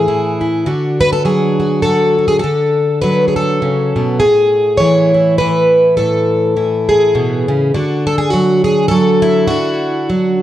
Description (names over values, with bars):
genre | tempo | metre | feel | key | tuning
folk, solo fingerstyle acoustic guitar | 102 BPM | 3/4 | swing 56% on 8ths | unclear | A4 = 441 Hz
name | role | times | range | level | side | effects
picked plugged-in twelve-string acoustic guitar | solo | 0.0-10.4 s | A2 to C#5 | -11 LUFS | equal | none
room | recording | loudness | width
moderate large studio reverb, RT60 1.2 s | dark, warm production | -11 LUFS | side -12 dB against mid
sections
0.0-10.4 A section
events
none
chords
0.0 A5; 0.7 Dmaj7; 4.2 Amaj7; 7.7 D